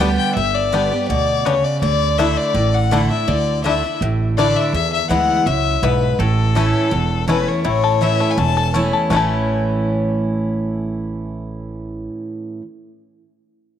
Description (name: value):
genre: bluegrass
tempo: 165 BPM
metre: 4/4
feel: straight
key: A mixolydian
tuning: A4 = 439 Hz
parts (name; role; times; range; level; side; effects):
- bluegrass banjo; melody; 0.0-12.1 s; A3 to A4; -24 LUFS; left 6 dB; none
- clear fiddle; melody; 0.0-8.7 s; A4 to A5; -20 LUFS; left 6 dB; none
- picked steel-string acoustic guitar; accompaniment; 0.0-12.6 s; E2 to G4; -21 LUFS; right 2 dB; none
- upright bass; bass; 0.0-12.1 s; E1 to E2; -21 LUFS; right 3 dB; none
room: moderate plate reverb, RT60 2.5 s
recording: 1960s-style stereo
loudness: -15 LUFS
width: side -9 dB against mid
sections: 0.0-7.7 A section; 7.7-9.1 B section; 9.1-12.0 C section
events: none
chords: 0.0 G; 1.8 Dsus2; 4.7 E; 6.2 A